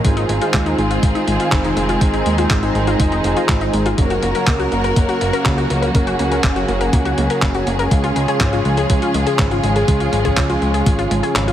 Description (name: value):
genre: italo disco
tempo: 122 BPM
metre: 4/4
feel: straight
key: unclear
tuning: A4 = 440 Hz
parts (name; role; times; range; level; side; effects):
- rich studio string section; sustained chords; 0.0-11.5 s; Db3 to Bb4; -20 LUFS; equal; shimmer reverb
- analog pluck; arpeggios; 0.0-11.5 s; Ab3 to Bb4; -22 LUFS; left 3 dB; chorus, ping-pong delay, shimmer reverb
- analog synth brass; stabs; 0.0-11.5 s; Db3 to Db5; -23 LUFS; right 2 dB; chorus, vintage 12-bit sampler grit, ping-pong delay, shimmer reverb
- fat analog bass; bass; 0.0-11.5 s; F1 to Eb2; -21 LUFS; equal; tube saturation
- dusty soul sampler-style drum kit; drums; 0.0-11.5 s; handclaps, hi-hat; -24 LUFS; equal; none
- electronic kick drum; drums; 0.0-11.0 s; none; -17 LUFS; equal; overdrive
room: moderate plate reverb, RT60 1.8 s, digital ambience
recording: heavily compressed radio sound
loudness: -14 LUFS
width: side -11 dB against mid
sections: 0.0-11.5 A section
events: kick drops out 11.4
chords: 0.0 Ab6; 4.0 Gb; 7.9 Db